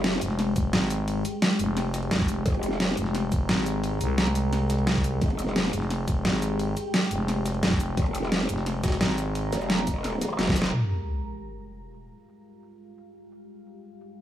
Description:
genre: dark technical drum and bass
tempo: 174 BPM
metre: 4/4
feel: straight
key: F minor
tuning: A4 = 439 Hz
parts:
  - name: deep dark ambient pad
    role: sustained chords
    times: 0.0-14.2 s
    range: Ab3 to Bb5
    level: -31 LUFS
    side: left 1 dB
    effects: chorus, built-in reverb, sidechain pumping
  - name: growl bass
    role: bass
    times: 0.0-0.2, 2.5-3.0, 5.2-5.7, 8.0-10.7 s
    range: F1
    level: -28 LUFS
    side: equal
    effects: chorus, overdrive, sidechain pumping
  - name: dubstep drum kit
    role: drums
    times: 0.0-14.1 s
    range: hi-hat, shaker, snare drum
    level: -27 LUFS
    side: equal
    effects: overdrive, low-pass filter on hats, low-pass filter on perc, low-pass filter on snare
  - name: jungle sampler-style drum kit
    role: drums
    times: 0.0-10.6 s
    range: hi-hat, ride cymbal, snare drum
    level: -37 LUFS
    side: equal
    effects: high-pass filter on cymbals, high-pass filter on snare, high-pass filter on hats
  - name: growling FM bass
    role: bass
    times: 0.2-9.5 s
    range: F1 to C2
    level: -28 LUFS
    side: equal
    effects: tube saturation
  - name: electronic kick drum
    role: drums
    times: 0.6-10.5 s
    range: none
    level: -26 LUFS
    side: equal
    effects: overdrive
  - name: sub drop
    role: sound effects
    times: 10.7-12.1 s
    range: none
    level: -30 LUFS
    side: equal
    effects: none
room: light reverb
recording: small room ambience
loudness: -23 LUFS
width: side -12 dB against mid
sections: 0.0-10.7 A section; 10.7-14.2 B section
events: drop 0.0-10.7; drum fill 10.4-10.7; band accent 10.6; impact 10.7-12.1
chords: 0.0 Fmadd9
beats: 0.04 0.39 0.73 | 1.08 1.42 1.77 2.11 | 2.46 2.80 3.15 3.49 | 3.84 4.18 4.53 4.87 | 5.21 5.56 5.91 6.25 | 6.59 6.94 7.28 7.63 | 7.97 8.32 8.66 9.01 | 9.35 9.70 10.04 10.39 | 10.73 11.08 11.42 11.77 | 12.11 12.46 12.80 13.15 | 13.49 13.84 14.18

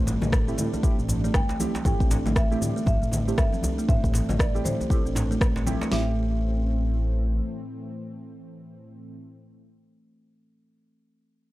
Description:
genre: afro house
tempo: 118 BPM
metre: 4/4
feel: swing 60% on 16ths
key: A minor pentatonic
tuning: A4 = 445 Hz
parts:
  - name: warm analog pad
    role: sustained chords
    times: 0.0-9.2 s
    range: A2 to D4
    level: -37 LUFS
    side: equal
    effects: chorus, vintage 12-bit sampler grit, sidechain pumping
  - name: buzzing kalimba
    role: arpeggios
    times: 0.0-6.2 s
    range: E3 to A4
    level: -32 LUFS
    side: equal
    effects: vintage 12-bit sampler grit, sidechain pumping, analog delay
  - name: deep mellow chord stab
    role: stabs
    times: 0.0-9.2 s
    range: A3 to C5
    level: -34 LUFS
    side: right 3 dB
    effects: chorus, phaser, sidechain pumping, analog delay
  - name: smooth gliding synth bass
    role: bass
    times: 0.0-7.4 s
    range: G1 to A2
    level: -27 LUFS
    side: equal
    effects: sidechain pumping
  - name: afro-pop drum kit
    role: drums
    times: 0.1-5.9 s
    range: rim click, shaker, toms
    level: -31 LUFS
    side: equal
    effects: small room ambience
  - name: djembe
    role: percussion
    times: 0.1-5.9 s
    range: none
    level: -34 LUFS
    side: equal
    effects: none
  - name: congas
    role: percussion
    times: 0.2-5.8 s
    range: none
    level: -33 LUFS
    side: left 2 dB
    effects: none
  - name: deep house drum kit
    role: drums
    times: 0.3-6.1 s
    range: kick drum, snare drum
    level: -24 LUFS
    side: equal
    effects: small room ambience
  - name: marimba with medium mallets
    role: melody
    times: 1.4-9.2 s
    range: C5 to G5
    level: -34 LUFS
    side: right 1 dB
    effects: analog delay
room: little or no reverb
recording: dry, gritty hardware recording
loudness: -22 LUFS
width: side -17 dB against mid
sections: 0.0-5.9 A section; 5.9-10.0 B section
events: drop 0.0-5.9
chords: 0.0 Am7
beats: 0.33 0.84 1.34 | 1.85 2.36 2.87 3.38 | 3.89 4.39 4.90 5.41 | 5.92 6.43 6.94 7.45 | 7.96 8.46 8.97

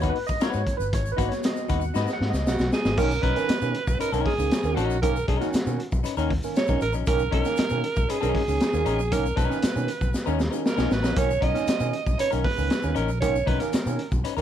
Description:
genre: funk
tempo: 117 BPM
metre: 4/4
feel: straight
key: unclear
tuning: A4 = 440 Hz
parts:
  - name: semi-hollow electric guitar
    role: accompaniment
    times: 0.0-14.4 s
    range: C#4 to B4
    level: -31 LUFS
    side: left 10 dB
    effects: none
  - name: barky tine electric piano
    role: stabs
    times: 0.0-14.4 s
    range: B2 to F#5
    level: -30 LUFS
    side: right 4 dB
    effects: overdrive, analog chorus
  - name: vintage muted fingered electric bass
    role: bass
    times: 0.0-14.4 s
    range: G1 to B2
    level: -28 LUFS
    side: equal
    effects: none
  - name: crunchy breakbeat drum kit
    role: drums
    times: 0.0-14.4 s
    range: crash cymbal, hi-hat, kick drum, snare drum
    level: -26 LUFS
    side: equal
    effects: none
  - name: tube shaker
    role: percussion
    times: 0.0-14.4 s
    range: none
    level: -44 LUFS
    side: left 5 dB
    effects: none
  - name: raspy alto saxophone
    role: melody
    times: 2.5-14.1 s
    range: F#4 to D#5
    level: -27 LUFS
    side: right 4 dB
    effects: none
room: little or no reverb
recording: none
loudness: -22 LUFS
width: side -10 dB against mid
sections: 0.0-3.0 A section; 3.0-14.4 B section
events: tine electric piano solo 0.0-3.0; drum fill 2.0-3.0, 10.1-11.2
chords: 0.0 G#m7; 3.0 Bmaj9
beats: 0.42 | 0.93 1.45 1.96 2.47 | 2.98 3.49 4.00 4.51 | 5.03 5.54 6.05 6.56 | 7.07 7.58 8.10 8.61 | 9.12 9.63 10.14 10.66 | 11.17 11.68 12.19 12.71 | 13.22 13.73 14.24

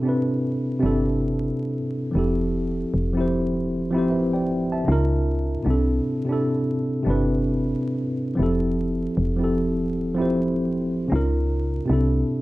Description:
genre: lo-fi hip hop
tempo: 77 BPM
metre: 4/4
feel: swing 60% on 16ths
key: C major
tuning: A4 = 436 Hz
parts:
  - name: mellow tine electric piano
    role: accompaniment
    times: 0.0-12.4 s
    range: C3 to A5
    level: -22 LUFS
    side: equal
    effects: medium stereo tremolo, cassette tape
  - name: woody FM bass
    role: bass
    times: 0.8-12.2 s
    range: F1 to Db2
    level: -25 LUFS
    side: equal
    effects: none
room: wet small room reverb, RT60 0.5 s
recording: dark, warm production, vinyl crackle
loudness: -21 LUFS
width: side -18 dB against mid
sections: 0.0-12.4 A section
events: none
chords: 0.0 C69; 2.2 Fmaj7; 4.9 Db69; 5.7 C69; 8.4 Fmaj7; 11.1 Db69; 11.9 C69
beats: 0.20 0.98 1.76 | 2.54 3.32 4.10 4.88 | 5.66 6.44 7.22 8.00 | 8.78 9.55 10.34 11.11 | 11.89

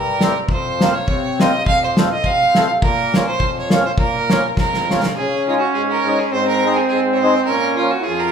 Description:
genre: alpine folk, alpine dance band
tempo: 103 BPM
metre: 2/4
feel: swing 54% on 8ths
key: Bb minor, Db major from 5.2 s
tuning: A4 = 439 Hz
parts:
  - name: bright fiddle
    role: melody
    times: 0.0-8.3 s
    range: F4 to F5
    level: -19 LUFS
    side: right 3 dB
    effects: none
  - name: mellow accordion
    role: accompaniment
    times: 0.0-8.3 s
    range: F2 to F4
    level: -20 LUFS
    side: left 2 dB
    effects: none
  - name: loose indie drum kit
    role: drums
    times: 0.2-5.2 s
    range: kick drum, snare drum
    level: -19 LUFS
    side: equal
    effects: none
  - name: mellow trumpet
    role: second line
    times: 5.1-8.3 s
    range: C4 to F4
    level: -19 LUFS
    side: right 3 dB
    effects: none
room: wet large studio reverb, RT60 1.2 s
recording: band playing live in one room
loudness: -14 LUFS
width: side -7 dB against mid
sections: 0.0-5.2 A section; 5.2-8.3 B section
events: drum fill 4.6-5.2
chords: 0.5 Fsus4; 1.6 F; 2.8 Bbm; 5.2 Dbsus2; 6.3 Ab; 7.5 Bbm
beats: | 0.47 1.07 | 1.65 2.23 | 2.81 3.39 | 3.97 4.56 | 5.16 5.75 | 6.33 6.91 | 7.48 8.06

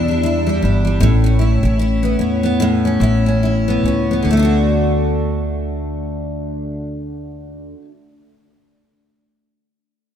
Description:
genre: acoustic pop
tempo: 69-80 BPM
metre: 4/4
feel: swing 60% on 16ths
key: D major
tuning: A4 = 440 Hz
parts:
  - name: picked steel-string acoustic guitar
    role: accompaniment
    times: 0.0-7.9 s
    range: E2 to F#4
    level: -17 LUFS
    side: left 1 dB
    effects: double-tracked left and right
  - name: upright bass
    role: bass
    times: 0.0-7.7 s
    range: G1 to E2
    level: -19 LUFS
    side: equal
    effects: none
room: light reverb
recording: rough home demo mix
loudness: -14 LUFS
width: side -9 dB against mid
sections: 0.0-4.3 A section; 4.3-7.7 B section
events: slowing down 0.0-4.3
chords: 0.0 Em7; 1.0 Aadd9; 4.3 D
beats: 0.24 | 1.01 1.79 2.59 3.41 | 4.26 5.12 5.99 6.85

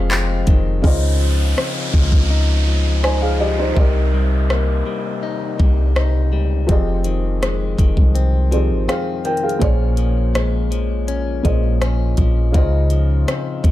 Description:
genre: contemporary R&B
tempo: 82 BPM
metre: 4/4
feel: straight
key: unclear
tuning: A4 = 441 Hz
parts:
  - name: felt-muted upright piano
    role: accompaniment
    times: 0.0-13.7 s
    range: Bb2 to Ab5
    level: -24 LUFS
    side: equal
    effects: none
  - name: direct-recorded clean electric guitar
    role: arpeggios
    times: 0.0-13.7 s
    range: F2 to Eb4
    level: -25 LUFS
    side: left 8 dB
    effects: digital delay
  - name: soft 808-style bass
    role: bass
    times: 0.0-13.7 s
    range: F1 to Db2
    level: -17 LUFS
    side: equal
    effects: none
  - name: smooth R&B drum kit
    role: drums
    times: 0.1-13.7 s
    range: handclaps, hi-hat, kick drum, rim click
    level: -18 LUFS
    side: equal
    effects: none
  - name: downlifter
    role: sound effects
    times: 0.8-6.7 s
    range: none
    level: -28 LUFS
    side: right 1 dB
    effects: none
room: digital ambience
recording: none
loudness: -15 LUFS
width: side -14 dB against mid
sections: 0.8-13.7 A section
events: none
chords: 0.0 Fm7; 0.8 Dbmaj9; 3.8 Cm7; 6.7 Fm7; 9.6 Bbm7; 12.5 Dbmaj9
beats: 0.10 | 0.84 1.57 2.30 3.03 | 3.76 4.50 5.23 5.96 | 6.69 7.42 8.15 8.89 | 9.62 10.35 11.08 11.81 | 12.54 13.28

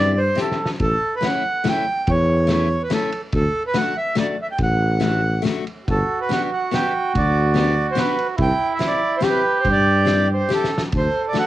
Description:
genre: alpine folk, alpine dance band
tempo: 142 BPM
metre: 3/4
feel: rubato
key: G major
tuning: A4 = 440 Hz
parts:
  - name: accordion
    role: melody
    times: 0.0-11.5 s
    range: A4 to G5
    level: -22 LUFS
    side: right 1 dB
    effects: cassette tape
  - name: picked steel-string acoustic guitar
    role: accompaniment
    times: 0.0-11.5 s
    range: A3 to G4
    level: -24 LUFS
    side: left 7 dB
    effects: cassette tape
  - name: dark tuba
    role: bass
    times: 0.0-11.1 s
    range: G1 to G2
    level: -20 LUFS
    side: equal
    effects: none
  - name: loose indie drum kit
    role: drums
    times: 0.4-11.5 s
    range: kick drum, ride cymbal, snare drum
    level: -26 LUFS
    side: equal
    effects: cassette tape
  - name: warm trumpet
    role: second line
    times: 5.8-11.5 s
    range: E4 to A4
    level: -22 LUFS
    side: right 5 dB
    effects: cassette tape
room: moderate booth ambience, RT60 0.2 s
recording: home recording on cassette, nothing above 10.3 kHz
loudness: -17 LUFS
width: side -14 dB against mid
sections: 0.0-11.5 A section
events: drum fill 0.4-0.8, 10.5-10.9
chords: 0.0 Cadd9; 0.8 A7; 3.3 D; 5.9 G; 8.4 C; 10.9 D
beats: 0.38 | 0.81 1.24 1.66 | 2.08 2.49 2.90 | 3.32 3.74 4.16 | 4.58 5.01 5.44 | 5.87 6.30 6.73 | 7.15 7.56 7.97 | 8.39 8.80 9.22 | 9.64 10.07 10.50 | 10.93 11.35

